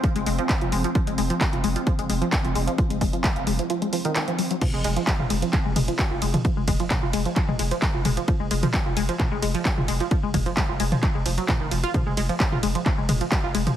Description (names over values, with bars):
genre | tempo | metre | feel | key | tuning
driving peak-time techno | 131 BPM | 4/4 | straight | F phrygian | A4 = 440 Hz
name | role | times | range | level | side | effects
tight sequenced synth | riff | 0.0-13.7 s | Eb3 to F4 | -27 LUFS | equal | chorus, sidechain pumping, ping-pong delay
swarming drone | drone | 0.0-4.7 s | F3 to C4 | -31 LUFS | equal | built-in reverb, sidechain pumping
electronic kick drum | drums | 0.0-13.4 s | none | -24 LUFS | equal | overdrive
punchy analog drum machine | drums | 0.0-13.8 s | crash cymbal, handclaps, hi-hat, ride cymbal, toms | -28 LUFS | equal | sidechain pumping on hats, sidechain pumping on toms, sidechain pumping on cymbals
saturated sub bass | bass | 0.2-13.7 s | F1 | -29 LUFS | equal | overdrive, sidechain pumping, low-pass filter
room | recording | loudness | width
light reverb | heavily compressed radio sound, multiband compression | -21 LUFS | side -11 dB against mid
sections
0.0-4.6 A section; 4.6-13.8 B section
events
kick drops out 3.7-4.6; drop 4.6-13.8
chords
0.0 F5; 4.6 Fm